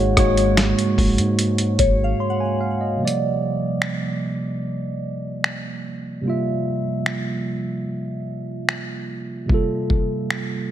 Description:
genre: contemporary R&B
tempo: 74 BPM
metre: 4/4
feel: straight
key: unclear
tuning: A4 = 437 Hz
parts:
  - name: mellow tine electric piano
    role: accompaniment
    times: 0.0-10.7 s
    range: Ab2 to C6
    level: -22 LUFS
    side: right 2 dB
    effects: phaser
  - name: warm analog pad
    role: sustained chords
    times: 0.0-3.0 s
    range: Db3 to Gb4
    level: -32 LUFS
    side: left 4 dB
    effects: none
  - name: rubbery square bass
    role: bass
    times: 0.0-2.1 s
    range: Ab1 to Ab2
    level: -23 LUFS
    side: equal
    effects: none
  - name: soft synth bell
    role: texture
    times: 0.0-3.8 s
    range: Db5 to Gb5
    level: -26 LUFS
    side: left 5 dB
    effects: chorus, tremolo, phaser, ping-pong delay
  - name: dusty soul sampler-style drum kit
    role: drums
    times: 0.2-10.5 s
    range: finger snaps, hi-hat, kick drum, rim click, snare drum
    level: -21 LUFS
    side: equal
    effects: none
room: light reverb, digital ambience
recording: none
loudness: -20 LUFS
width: side -11 dB against mid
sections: 0.0-3.0 A section; 3.0-10.7 B section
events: break 2.2-3.0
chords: 0.0 Ab9sus4; 3.0 C9sus4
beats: 0.58 1.39 2.20 | 3.01 3.82 4.63 5.44 | 6.25 7.06 7.87 8.68 | 9.49 10.31

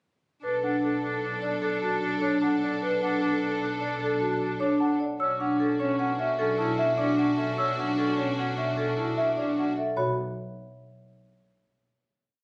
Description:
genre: classical, minimalist pattern music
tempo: 151 BPM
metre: 6/4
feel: straight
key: B minor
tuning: A4 = 440 Hz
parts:
  - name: marimba with medium mallets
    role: melody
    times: 0.4-10.2 s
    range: A4 to A5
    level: -33 LUFS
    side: equal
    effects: none
  - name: warm oboe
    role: second line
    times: 0.4-9.7 s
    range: C#4 to D4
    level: -36 LUFS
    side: equal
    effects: none
  - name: clear studio violin section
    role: sustained chords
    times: 0.4-9.7 s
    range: D4 to A4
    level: -35 LUFS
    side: equal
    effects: none
  - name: bright studio double bass section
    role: bass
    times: 0.4-10.2 s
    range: B1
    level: -39 LUFS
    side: equal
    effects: none
  - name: vibraphone with medium hard mallets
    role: arpeggios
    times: 0.6-10.2 s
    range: C#4 to A4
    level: -30 LUFS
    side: equal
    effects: none
  - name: small celesta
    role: arpeggios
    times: 2.4-10.2 s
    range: E5 to E6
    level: -33 LUFS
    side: equal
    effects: none
room: light reverb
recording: recorded on a phone in the room, studio reverb, compression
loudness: -27 LUFS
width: mono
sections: 0.4-10.0 A section; 10.0-12.4 final chord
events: none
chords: 0.4 Bm7; 5.2 Dmaj7/B; 10.0 B5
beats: | 0.43 0.83 1.23 1.62 2.02 2.42 | 2.82 3.21 3.61 4.01 4.41 4.80 | 5.20 5.60 6.00 6.39 6.79 7.19 | 7.58 7.98 8.38 8.78 9.17 9.57 | 9.97

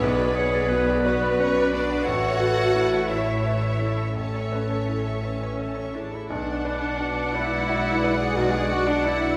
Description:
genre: cinematic, emotional film score for orchestra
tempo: 57 BPM (dotted quarters)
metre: 6/8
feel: uneven beats, rubato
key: B dorian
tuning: A4 = 440 Hz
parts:
  - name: bright symphonic violin section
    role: melody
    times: 0.0-9.4 s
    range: B4 to F#5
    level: -38 LUFS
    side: equal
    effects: none
  - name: clear oboe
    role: second line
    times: 0.0-9.4 s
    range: B4 to F#5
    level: -34 LUFS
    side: equal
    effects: none
  - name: clear studio violin section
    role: second line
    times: 0.0-9.4 s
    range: B4 to C#6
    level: -38 LUFS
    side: equal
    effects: none
  - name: warm clarinet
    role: second line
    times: 0.0-9.4 s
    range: F#4 to D5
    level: -35 LUFS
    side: equal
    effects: none
  - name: bright baby grand piano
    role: accompaniment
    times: 0.0-9.4 s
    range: A1 to E5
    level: -34 LUFS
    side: equal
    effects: none
  - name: rich symphonic viola section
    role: accompaniment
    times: 0.0-9.4 s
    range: C#4 to C#5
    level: -31 LUFS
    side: equal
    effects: none
  - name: mellow French horn section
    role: sustained chords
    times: 0.0-9.4 s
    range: D4 to E5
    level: -31 LUFS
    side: equal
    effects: none
  - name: rich symphonic cello section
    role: bass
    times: 0.0-9.3 s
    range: G#3 to F#4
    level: -31 LUFS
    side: equal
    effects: none
  - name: rich symphonic double bass section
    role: bass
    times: 0.0-9.4 s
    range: A1 to B1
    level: -31 LUFS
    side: equal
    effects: none
room: wet scoring stage reverb, RT60 1.8 s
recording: none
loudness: -24 LUFS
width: mono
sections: 0.0-6.3 A section; 6.3-9.4 B section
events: none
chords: 0.0 Bm; 2.0 A; 6.3 Bm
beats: | 0.02 1.03 | 2.05 3.09 | 4.16 5.23 | 6.30 7.34 | 8.37

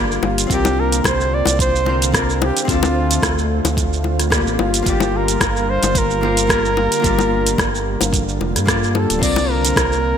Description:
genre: sunset chillout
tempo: 110 BPM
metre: 4/4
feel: swing 54% on 16ths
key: G minor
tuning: A4 = 440 Hz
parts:
  - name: hollow-body jazz guitar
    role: accompaniment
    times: 0.0-10.2 s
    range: Bb3 to D5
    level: -24 LUFS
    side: moving between left 8 dB and right 1 dB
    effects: auto-pan
  - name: lush unison pad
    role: sustained chords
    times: 0.0-10.2 s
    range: D3 to F4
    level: -24 LUFS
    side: right 1 dB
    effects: chorus
  - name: round analog bass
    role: bass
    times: 0.0-10.2 s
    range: D1 to G2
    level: -21 LUFS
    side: right 1 dB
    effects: none
  - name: deep house drum kit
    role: drums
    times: 0.1-10.0 s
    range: crash cymbal, hi-hat, rim click, shaker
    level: -21 LUFS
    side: right 1 dB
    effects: gated reverb
  - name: bongos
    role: percussion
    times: 0.2-9.9 s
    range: none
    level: -25 LUFS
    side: left 7 dB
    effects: none
  - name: mellow flugelhorn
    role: melody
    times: 0.3-10.2 s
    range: F4 to D5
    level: -21 LUFS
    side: right 1 dB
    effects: ping-pong delay
  - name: electronic kick drum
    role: drums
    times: 0.5-9.9 s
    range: none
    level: -23 LUFS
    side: right 1 dB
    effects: none
room: moderate lush hall reverb, RT60 1.8 s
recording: bright 1980s-style digital production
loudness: -15 LUFS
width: side -8 dB against mid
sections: 0.0-10.2 A section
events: none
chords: 0.0 Gm7; 0.5 C9sus4; 2.7 Dm7; 4.6 Gm7; 9.2 C9sus4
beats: | 0.50 1.05 1.59 2.14 | 2.68 3.23 3.77 4.32 | 4.86 5.41 5.96 6.50 | 7.05 7.59 8.14 8.68 | 9.23 9.77

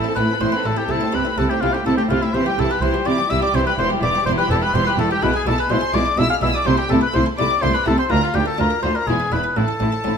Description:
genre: classical, baroque-style concerto movement with solo episodes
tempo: 124 BPM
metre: 3/4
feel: straight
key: A minor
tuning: A4 = 442 Hz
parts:
  - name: clear symphonic violin section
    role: melody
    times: 0.0-10.2 s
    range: E5 to F6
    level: -26 LUFS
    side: equal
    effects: none
  - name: warm oboe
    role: melody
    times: 0.0-10.2 s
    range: E4 to F5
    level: -22 LUFS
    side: left 2 dB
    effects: none
  - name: warm studio violin section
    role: second line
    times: 0.0-10.1 s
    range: C4 to A4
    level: -25 LUFS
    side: left 2 dB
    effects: none
  - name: buff-stop harpsichord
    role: accompaniment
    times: 0.0-10.2 s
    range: D2 to E5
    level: -26 LUFS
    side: equal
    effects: none
  - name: rich chamber viola section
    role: accompaniment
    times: 0.0-10.1 s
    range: E3 to D4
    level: -27 LUFS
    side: right 2 dB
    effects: none
  - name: rich chamber double bass section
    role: bass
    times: 0.2-10.1 s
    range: E1 to D2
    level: -25 LUFS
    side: right 2 dB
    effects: none
  - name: rich studio cello section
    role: bass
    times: 0.2-10.1 s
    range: D2 to C3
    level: -24 LUFS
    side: right 2 dB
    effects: none
room: wet stone room reverb, RT60 1.2 s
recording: none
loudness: -16 LUFS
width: side -6 dB against mid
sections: 0.0-10.2 A section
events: none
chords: 0.0 Am; 0.9 Am/C; 2.3 C; 3.8 C/E; 5.2 E7/B; 6.7 Am/C; 8.1 Bb/D; 9.1 E; 9.6 Am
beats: 0.41 | 0.89 1.38 1.86 | 2.34 2.82 3.31 | 3.79 4.26 4.74 | 5.22 5.70 6.18 | 6.66 7.14 7.62 | 8.11 8.59 9.08 | 9.57 10.06

